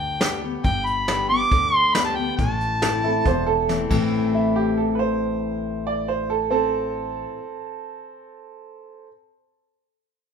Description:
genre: honky-tonk and classic country.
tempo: 138 BPM.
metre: 4/4.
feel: straight.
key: A minor.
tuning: A4 = 440 Hz.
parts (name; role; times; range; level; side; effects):
mellow harmonica; melody; 0.0-3.6 s; G5 to D6; -21 LUFS; equal; none.
picked steel-string acoustic guitar; accompaniment; 0.0-7.4 s; E2 to G4; -25 LUFS; left 4 dB; none.
upright bass; bass; 0.0-7.2 s; E1 to D2; -31 LUFS; equal; none.
vintage brush drum kit; drums; 0.2-4.0 s; crash cymbal, hi-hat, kick drum, snare drum; -25 LUFS; equal; none.
bright upright piano; second line; 3.0-9.1 s; C4 to D5; -24 LUFS; right 6 dB; none.
room: moderate large studio reverb, RT60 1.4 s.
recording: minimal, uncompressed stereo recording.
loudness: -19 LUFS.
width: side -6 dB against mid.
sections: 0.0-4.1 A section; 4.1-7.6 B section.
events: drum fill 3.7-4.1.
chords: 0.0 G; 2.4 Am.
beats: 0.20 | 0.64 1.08 1.51 1.95 | 2.38 2.82 3.25 3.69 | 4.12 4.56 4.99 5.43 | 5.87 6.30 6.74 7.17.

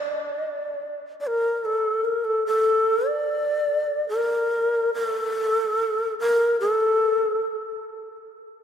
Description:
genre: japanese traditional.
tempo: 74 BPM.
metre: 2/4.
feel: rubato.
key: unclear.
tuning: A4 = 440 Hz.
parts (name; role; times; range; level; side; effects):
breathy long shakuhachi; solo; 0.0-7.8 s; A4 to D5; -21 LUFS; left 1 dB; none.
room: wet church reverb, RT60 3.7 s.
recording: minimal, uncompressed stereo recording.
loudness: -21 LUFS.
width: side -8 dB against mid.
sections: 0.0-5.0 A section; 5.0-8.6 B section.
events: none.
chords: none.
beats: | 0.04 0.84 | 1.63 2.43 | 3.25 4.09 | 4.95 5.78 | 6.59 7.39.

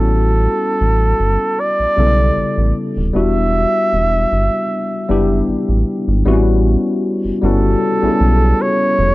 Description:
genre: R&B, neo-soul.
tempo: 77 BPM.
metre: 4/4.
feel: swing 53% on 16ths.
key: unclear.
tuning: A4 = 440 Hz.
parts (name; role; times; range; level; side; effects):
trumpet with bucket mute; melody; 0.0-9.1 s; A4 to E5; -17 LUFS; right 1 dB; none.
tine electric piano; accompaniment; 0.0-9.1 s; C#3 to A4; -18 LUFS; left 2 dB; analog chorus.
rubbery square bass; bass; 0.0-9.1 s; D#1 to B1; -15 LUFS; equal; none.
room: little or no reverb.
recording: dry, close 1970s-style studio recording.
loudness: -13 LUFS.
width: side -18 dB against mid.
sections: 0.0-6.3 A section; 6.3-9.1 B section.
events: none.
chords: 0.0 A13; 3.1 Em9; 6.3 A13.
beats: | 0.02 0.80 1.58 2.36 | 3.14 3.92 4.70 5.48 | 6.26 7.04 7.82 8.59.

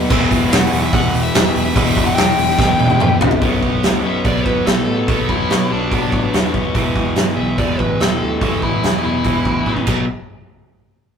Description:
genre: hard rock.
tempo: 144 BPM.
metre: 4/4.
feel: straight.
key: B minor.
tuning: A4 = 438 Hz.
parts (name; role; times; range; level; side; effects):
crunchy overdriven guitar; riff; 0.0-10.0 s; E2 to B3; -21 LUFS; left 5 dB; none.
heavy high-gain guitar; riff; 0.0-3.4 s; E3 to B4; -28 LUFS; right 1 dB; none.
overdriven semi-hollow guitar; riff; 0.0-10.0 s; E2 to B3; -22 LUFS; right 6 dB; none.
picked electric bass; bass; 0.0-10.1 s; E1 to B2; -24 LUFS; equal; none.
huge arena drum kit; drums; 0.1-10.0 s; crash cymbal, hi-hat, kick drum, snare drum, toms; -17 LUFS; equal; none.
nasal lead guitar with a parked wah; melody; 0.5-9.9 s; D4 to G5; -21 LUFS; left 2 dB; overdrive.
room: light reverb.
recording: rough rehearsal-room recording, tube saturation.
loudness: -14 LUFS.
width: side -7 dB against mid.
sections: 0.0-3.4 A section; 3.4-10.1 B section; 10.1-11.2 C section.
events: drum fill 2.6-3.4, 9.7-10.1; lead electric guitar solo 3.4-10.1.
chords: 0.1 Em; 3.4 Bm; 6.7 E5; 9.9 B5; 10.1 N.C..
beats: | 0.10 0.52 0.93 1.34 | 1.76 2.17 2.59 3.00 | 3.42 3.83 4.25 4.66 | 5.08 5.49 5.91 6.33 | 6.74 7.16 7.58 7.99 | 8.41 8.83 9.25 9.66.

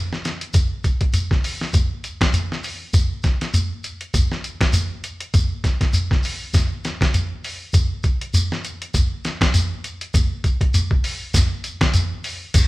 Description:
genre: afrobeat.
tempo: 100 BPM.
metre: 4/4.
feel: swing 56% on 16ths.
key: none.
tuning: none.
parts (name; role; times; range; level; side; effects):
lo-fi sampler-style drum kit; drums; 0.1-12.7 s; crash cymbal, hi-hat, kick drum, snare drum; -20 LUFS; equal; none.
shekere; percussion; 0.2-12.7 s; none; -21 LUFS; equal; none.
room: wet large studio reverb, RT60 1.0 s.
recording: band playing live in one room.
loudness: -18 LUFS.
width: side -19 dB against mid.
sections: 0.0-12.5 A section.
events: none.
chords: none.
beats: | 0.55 1.15 1.75 2.34 | 2.94 3.54 4.14 4.74 | 5.34 5.94 6.54 7.14 | 7.74 8.34 8.94 9.54 | 10.14 10.74 11.34 11.94 | 12.55.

